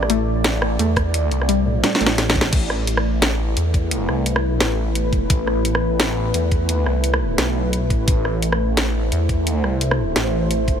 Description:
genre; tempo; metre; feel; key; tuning
half-time drum and bass; 173 BPM; 4/4; swing 58% on 16ths, half-time; A minor; A4 = 442 Hz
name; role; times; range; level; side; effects
deep dark ambient pad; sustained chords; 0.0-10.8 s; A3 to D5; -24 LUFS; equal; chorus, built-in reverb, sidechain pumping
phased detuned saw bass; bass; 0.0-10.8 s; A1 to E2; -21 LUFS; equal; phaser
drum and bass drum kit; drums; 0.0-10.8 s; crash cymbal, hi-hat, rim click, snare drum; -22 LUFS; equal; none
warbly dusty pluck; arpeggios; 0.1-2.5 s; A2 to A3; -25 LUFS; left 3 dB; chorus, ping-pong delay
electronic kick drum; drums; 1.0-10.8 s; none; -20 LUFS; equal; none
room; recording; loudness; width
digital ambience; none; -17 LUFS; side -8 dB against mid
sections
0.0-2.5 A section; 2.5-10.8 A section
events
drop 0.0-2.5, 2.5-10.8; drum fill 1.8-2.5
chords
0.0 Am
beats
0.10 0.45 0.79 | 1.14 1.49 1.83 2.18 | 2.53 2.87 3.22 3.57 | 3.92 4.26 4.61 4.96 | 5.30 5.65 6.00 6.34 | 6.69 7.04 7.38 7.73 | 8.08 8.42 8.77 9.12 | 9.46 9.81 10.16 10.50

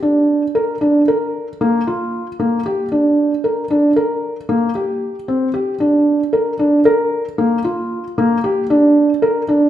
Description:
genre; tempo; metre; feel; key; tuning
contemporary instrumental, chamber music in an uneven meter; 228 BPM (eighths); 11/8; straight; unclear; A4 = 439 Hz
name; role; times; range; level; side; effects
felt-muted upright piano; solo; 0.0-9.7 s; Bb3 to Bb4; -14 LUFS; equal; none
room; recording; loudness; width
wet recital hall reverb, RT60 1.4 s; recorded in a church or concert hall; -14 LUFS; side -11 dB against mid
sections
0.0-9.7 A section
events
none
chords
none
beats
| 0.02 0.28 0.55 0.81 1.07 1.34 1.60 1.86 2.13 2.39 2.65 | 2.92 3.18 3.44 3.70 3.97 4.23 4.49 4.75 5.02 5.28 5.54 | 5.80 6.07 6.33 6.59 6.86 7.12 7.38 7.64 7.90 8.17 8.43 | 8.69 8.95 9.21 9.48

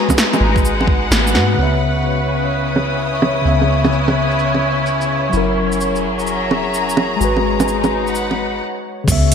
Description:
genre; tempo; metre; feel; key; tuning
future garage; 128 BPM; 4/4; swing 66% on 16ths; C# dorian; A4 = 440 Hz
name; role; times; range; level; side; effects
mellow tine electric piano; accompaniment; 0.0-9.3 s; C#3 to E5; -19 LUFS; left 2 dB; medium stereo tremolo, sidechain pumping, digital delay
rich studio string section; sustained chords; 0.0-9.3 s; C#3 to D#6; -20 LUFS; left 1 dB; sidechain pumping
wind-like tuned noise texture; texture; 0.0-8.6 s; C#5 to D#6; -26 LUFS; right 1 dB; built-in reverb
electronic kick drum; drums; 0.1-1.0, 9.1-9.2 s; none; -17 LUFS; equal; overdrive, studio reverb
garage drum kit; drums; 0.1-9.3 s; bongos, crash cymbal, hi-hat, shaker, snare drum; -19 LUFS; right 2 dB; overdrive, low-pass filter on perc, studio reverb, low-pass filter on snare, low-pass filter on cymbals, low-pass filter on hats, gated reverb
soft 808-style bass; bass; 0.4-9.3 s; F#1 to G#2; -22 LUFS; equal; sidechain pumping
room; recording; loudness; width
wet plate reverb, RT60 2.1 s; bright 1980s-style digital production; -14 LUFS; side -7 dB against mid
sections
0.0-1.6 A section; 1.6-9.1 B section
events
filter sweep on tine electric piano 0.0-1.6; band accent 1.1; filter sweep on drum 1.6-9.1; stop 8.6-9.1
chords
0.0 G#m7; 1.6 C#m7; 5.3 F#7; 7.2 G#m7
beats
0.17 0.64 1.11 | 1.57 2.04 2.51 2.98 | 3.45 3.92 4.39 4.86 | 5.32 5.79 6.26 6.73 | 7.20 7.67 8.14 8.61 | 9.07

